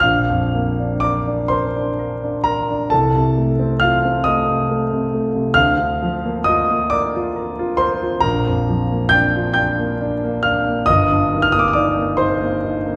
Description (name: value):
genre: classical, romantic nocturne for solo piano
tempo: 45 BPM (dotted quarters)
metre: 12/8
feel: rubato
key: Bb major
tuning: A4 = 440 Hz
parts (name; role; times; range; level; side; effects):
- warm concert grand piano; solo; 0.0-13.0 s; G1 to G6; -18 LUFS; equal; none
room: wet recital hall reverb, RT60 1.3 s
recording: recorded in a church or concert hall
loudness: -18 LUFS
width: mono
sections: 0.0-13.0 A section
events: none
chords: 0.0 Bb; 2.9 F7/C; 5.6 Bb/D; 8.2 Bb; 10.9 Eb/G